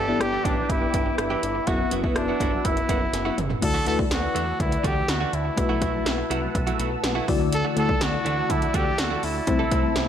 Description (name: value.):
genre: 1980s-style pop.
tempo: 123 BPM.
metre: 4/4.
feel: straight.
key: unclear.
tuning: A4 = 438 Hz.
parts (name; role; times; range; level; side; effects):
clear trumpet; melody; 0.0-10.1 s; D4 to A4; -27 LUFS; right 1 dB; ping-pong delay.
FM electric piano with tremolo; accompaniment; 0.0-10.1 s; G2 to E5; -28 LUFS; left 6 dB; none.
phased analog pad; sustained chords; 0.0-10.1 s; B4 to E6; -32 LUFS; right 2 dB; phaser, chorus.
direct-recorded clean electric guitar; riff; 0.0-10.0 s; E3 to A4; -32 LUFS; right 6 dB; wide subtle chorus, ping-pong delay.
fat analog bass; bass; 0.0-10.1 s; F#1 to E2; -30 LUFS; right 1 dB; none.
80s electronic pad drums; drums; 0.2-10.1 s; crash cymbal, hi-hat, kick drum, rim click, snare drum, toms; -26 LUFS; equal; gated reverb on snare and toms.
room: light reverb.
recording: none.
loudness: -21 LUFS.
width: side -9 dB against mid.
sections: 0.0-3.6 A section; 3.6-10.1 B section.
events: drum fill 3.1-3.6.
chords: 0.0 Em7/G; 1.7 Bsus4/F#; 3.6 Dadd9; 5.6 B7sus4; 7.3 Dadd9; 9.5 Am/C.